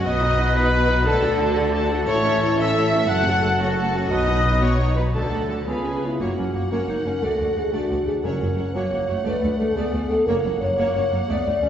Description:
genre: cinematic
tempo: 118 BPM (dotted quarters)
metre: 6/8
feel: straight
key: unclear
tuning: A4 = 440 Hz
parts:
  - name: rich symphonic violin section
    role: melody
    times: 0.0-11.7 s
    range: C#5 to A5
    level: -35 LUFS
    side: left 1 dB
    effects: none
  - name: clear symphonic violin section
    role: second line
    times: 0.0-11.7 s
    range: F#4 to F#5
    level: -28 LUFS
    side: left 1 dB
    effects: none
  - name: silver concert flute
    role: second line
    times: 0.0-6.2 s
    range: F#5 to F#6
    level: -28 LUFS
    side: left 1 dB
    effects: none
  - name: warm clarinet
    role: second line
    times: 0.0-11.7 s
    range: A3 to F#5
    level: -30 LUFS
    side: left 1 dB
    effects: none
  - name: rich symphonic viola section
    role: accompaniment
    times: 0.0-11.7 s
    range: F#3 to D#5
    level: -28 LUFS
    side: equal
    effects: none
  - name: dark French horn section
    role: sustained chords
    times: 0.0-11.7 s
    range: F#3 to D5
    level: -25 LUFS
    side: left 1 dB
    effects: none
  - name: clear symphonic cello section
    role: bass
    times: 0.0-11.7 s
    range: D2 to D3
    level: -27 LUFS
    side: right 1 dB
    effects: none
  - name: clear symphonic double bass section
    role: bass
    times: 0.0-11.7 s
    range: F#1 to D2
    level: -26 LUFS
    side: right 1 dB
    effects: none
  - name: warm trumpet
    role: stabs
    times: 0.1-6.0 s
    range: G#4 to B4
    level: -27 LUFS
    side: equal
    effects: none
  - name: timpani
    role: percussion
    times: 8.2-10.7 s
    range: F#2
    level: -36 LUFS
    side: equal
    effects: none
room: wet scoring stage reverb, RT60 1.6 s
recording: recorded in a church or concert hall, nothing above 7.8 kHz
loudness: -19 LUFS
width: side -9 dB against mid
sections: 0.0-6.2 A section; 6.2-11.7 B section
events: none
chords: 0.1 B; 1.1 D; 2.1 A; 3.1 F#m; 4.1 B; 5.1 D; 5.7 C#7; 6.2 F#; 7.2 D; 8.2 F#; 9.3 D; 10.3 F#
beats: | 0.05 0.56 | 1.07 1.57 | 2.08 2.59 | 3.10 3.61 | 4.12 4.63 | 5.15 5.67 | 6.20 6.71 | 7.22 7.73 | 8.24 8.74 | 9.25 9.76 | 10.27 10.77 | 11.28

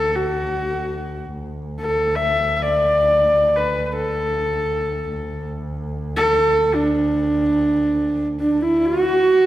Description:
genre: mongolian traditional, Mongolian folk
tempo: free time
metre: none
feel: none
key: D gong mode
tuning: A4 = 445 Hz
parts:
  - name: warm horsehead fiddle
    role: melody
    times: 0.0-9.5 s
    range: D4 to E5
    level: -18 LUFS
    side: equal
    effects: none
  - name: rich double bass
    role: drone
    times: 0.0-8.9 s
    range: D2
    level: -28 LUFS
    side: equal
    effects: none
  - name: breathy mellow low xiao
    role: second line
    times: 8.4-9.5 s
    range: D4 to F#4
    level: -20 LUFS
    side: right 6 dB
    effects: none
room: wet recital hall reverb, RT60 1.6 s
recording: recorded in a church or concert hall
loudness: -17 LUFS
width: side -14 dB against mid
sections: 0.0-8.9 A section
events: none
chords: none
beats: free time

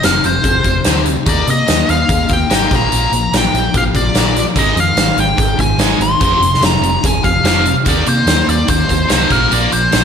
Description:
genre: hard rock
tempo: 145 BPM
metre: 4/4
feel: straight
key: unclear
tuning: A4 = 442 Hz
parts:
  - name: nasal lead guitar with a parked wah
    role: melody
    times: 0.0-10.0 s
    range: Bb4 to C6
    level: -16 LUFS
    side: left 1 dB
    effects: overdrive, slapback echo
  - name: heavy high-gain guitar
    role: riff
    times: 0.0-10.0 s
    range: F2 to Eb4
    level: -19 LUFS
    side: left 9 dB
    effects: distortion, slapback echo
  - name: hollow-body short-scale fingered electric bass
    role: bass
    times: 0.0-10.0 s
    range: F1 to C3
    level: -19 LUFS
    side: equal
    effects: none
  - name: huge arena drum kit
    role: drums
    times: 0.0-10.0 s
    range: hi-hat, kick drum, snare drum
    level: -16 LUFS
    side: equal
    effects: none
  - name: sludgy distorted guitar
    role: riff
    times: 4.6-10.0 s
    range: F2 to Eb4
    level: -20 LUFS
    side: right 10 dB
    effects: overdrive, slapback echo
room: moderate lush hall reverb, RT60 1.7 s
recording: big arena sound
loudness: -11 LUFS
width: side -7 dB against mid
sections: 0.0-10.0 A section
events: none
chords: 0.0 F5; 1.3 Eb; 2.7 Bb5; 4.6 Ab5; 6.2 F5; 7.9 Eb5; 9.3 Bb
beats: 0.03 0.44 0.85 | 1.26 1.67 2.09 2.50 | 2.91 3.32 3.73 4.15 | 4.56 4.97 5.38 5.80 | 6.21 6.62 7.04 7.45 | 7.86 8.28 8.69 9.10 | 9.52 9.93

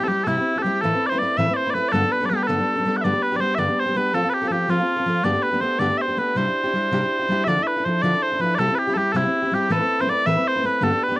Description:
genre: celtic folk, Celtic jig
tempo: 108 BPM (dotted quarters)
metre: 6/8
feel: straight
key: C major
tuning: A4 = 440 Hz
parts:
  - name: mellow small bagpipes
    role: melody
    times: 0.0-11.2 s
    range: E4 to F#5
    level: -20 LUFS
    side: equal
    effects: none
  - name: fingerpicked steel-string acoustic guitar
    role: accompaniment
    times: 0.0-11.2 s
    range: G2 to B4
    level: -23 LUFS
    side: left 1 dB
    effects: none
room: light reverb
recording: worn, warbling old tape, cassette tape, warbly pitch drift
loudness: -18 LUFS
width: side -19 dB against mid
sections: 0.0-7.5 A section; 7.5-11.2 A section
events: none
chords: 0.0 C; 0.8 Amadd9; 1.9 Gadd9; 3.0 G; 4.1 F; 5.3 Gadd9; 6.4 Cadd9; 7.5 Dmadd9; 8.6 C; 9.7 Amadd9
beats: 0.27 | 0.82 1.37 | 1.93 2.48 | 3.03 3.59 | 4.14 4.70 | 5.25 5.81 | 6.36 6.92 | 7.47 8.03 | 8.59 9.14 | 9.70 10.25 | 10.81

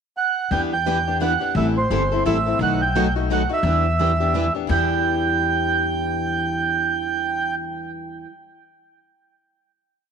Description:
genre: acoustic string swing (jazz manouche)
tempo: 172 BPM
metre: 3/4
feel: swing 60% on 8ths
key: E minor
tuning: A4 = 440 Hz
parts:
  - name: mellow accordion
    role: melody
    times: 0.2-7.5 s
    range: C5 to G5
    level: -22 LUFS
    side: right 5 dB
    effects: tape echo
  - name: picked old ladder-braced acoustic guitar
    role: accompaniment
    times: 0.5-8.3 s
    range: B2 to A4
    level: -26 LUFS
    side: left 14 dB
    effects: none
  - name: picked plugged-in steel-string acoustic guitar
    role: accompaniment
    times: 0.5-8.3 s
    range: B2 to B4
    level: -28 LUFS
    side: right 8 dB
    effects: none
  - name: upright bass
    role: bass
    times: 0.5-8.2 s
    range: G1 to E2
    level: -25 LUFS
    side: left 2 dB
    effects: none
room: moderate echo chamber reverb, RT60 1.8 s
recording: 1960s-style stereo with parts hard left and right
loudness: -18 LUFS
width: side -6 dB against mid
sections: 0.0-0.5 pickup bar; 0.5-4.7 A section; 4.7-6.8 final chord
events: none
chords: 0.0 N.C.; 0.5 Em7; 1.6 Am7; 2.6 B7; 3.7 Em7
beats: 0.17 | 0.52 0.87 1.22 | 1.56 1.91 2.26 | 2.61 2.96 3.30 | 3.65 4.00 4.35 | 4.70 5.04 5.39 | 5.74 6.09 6.43

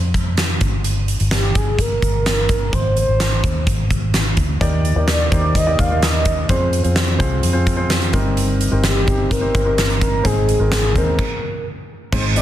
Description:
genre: piano-driven pop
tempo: 128 BPM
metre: 4/4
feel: straight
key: unclear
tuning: A4 = 444 Hz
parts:
  - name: vintage muted fingered electric bass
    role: bass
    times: 0.0-12.4 s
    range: G1 to F2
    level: -19 LUFS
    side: equal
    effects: none
  - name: huge arena drum kit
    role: drums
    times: 0.1-12.4 s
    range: crash cymbal, hi-hat, kick drum, snare drum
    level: -19 LUFS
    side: equal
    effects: none
  - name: mellow horn-like synth lead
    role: melody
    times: 1.3-12.4 s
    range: G4 to F5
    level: -22 LUFS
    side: right 1 dB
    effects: chorus, plate reverb
  - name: warm baby grand piano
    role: accompaniment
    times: 4.6-12.4 s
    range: G2 to Eb5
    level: -22 LUFS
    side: equal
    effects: plate reverb
room: light reverb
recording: dense, heavily limited modern master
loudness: -15 LUFS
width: side -12 dB against mid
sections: 0.0-12.1 A section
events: stop 11.2-12.1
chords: 0.0 F5; 0.6 Gm; 2.7 Ab; 4.6 Ebmaj7; 6.5 Fm; 8.1 Cm7/G; 10.3 Ab; 11.2 N.C.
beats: 0.38 | 0.85 1.32 1.79 2.26 | 2.73 3.20 3.67 4.14 | 4.61 5.08 5.55 6.02 | 6.49 6.96 7.43 7.90 | 8.37 8.84 9.31 9.78 | 10.25 10.72 11.19 11.66 | 12.13

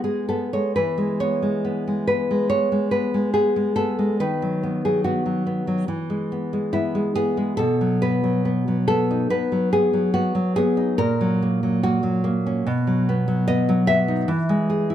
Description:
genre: romantic piece for solo classical guitar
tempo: 71 BPM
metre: 4/4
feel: rubato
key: E major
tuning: A4 = 439 Hz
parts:
  - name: nylon-string guitar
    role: solo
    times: 0.0-14.9 s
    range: A#2 to E5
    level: -19 LUFS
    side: equal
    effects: none
room: moderate recital hall reverb, RT60 1.3 s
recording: close, detailed microphones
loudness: -19 LUFS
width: side -10 dB against mid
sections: 0.8-14.9 A section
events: none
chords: 0.0 E; 4.2 B/D#; 5.9 E; 7.6 B; 11.0 F#/A#; 12.7 B; 14.3 E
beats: | 0.76 1.64 2.50 3.34 | 4.20 5.04 5.88 6.72 | 7.58 8.44 9.30 10.14 | 10.99 11.83 12.66 13.49 | 14.30

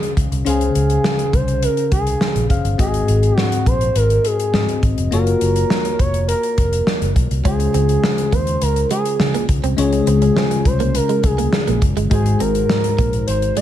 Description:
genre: 1980s-style pop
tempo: 103 BPM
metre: 4/4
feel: straight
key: Db major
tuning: A4 = 441 Hz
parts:
  - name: expressive synth lead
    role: melody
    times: 0.0-13.6 s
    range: Ab4 to Eb5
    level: -21 LUFS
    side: right 2 dB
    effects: chorus
  - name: bell-like tine electric piano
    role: accompaniment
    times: 0.0-13.6 s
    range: Ab2 to F5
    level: -21 LUFS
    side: left 4 dB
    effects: phaser
  - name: modern studio drum kit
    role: drums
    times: 0.0-13.6 s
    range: hi-hat, kick drum, snare drum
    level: -20 LUFS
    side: equal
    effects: gated reverb
  - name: fingered electric bass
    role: bass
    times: 0.2-13.5 s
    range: F1 to Db3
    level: -20 LUFS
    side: equal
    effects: none
  - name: direct-recorded clean electric guitar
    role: riff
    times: 7.5-13.6 s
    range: Ab3 to Db4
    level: -26 LUFS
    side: right 11 dB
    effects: lush chorus
room: studio reverb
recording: none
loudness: -15 LUFS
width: side -11 dB against mid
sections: 0.0-13.6 A section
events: none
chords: 0.0 Dbmaj7; 2.8 Ab7; 5.1 Gbmaj7; 7.5 Dbmaj7; 12.1 Ab7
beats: | 0.46 1.04 1.63 2.21 | 2.79 3.37 3.96 4.54 | 5.12 5.70 6.29 6.87 | 7.45 8.03 8.62 9.20 | 9.78 10.36 10.95 11.53 | 12.11 12.69 13.28

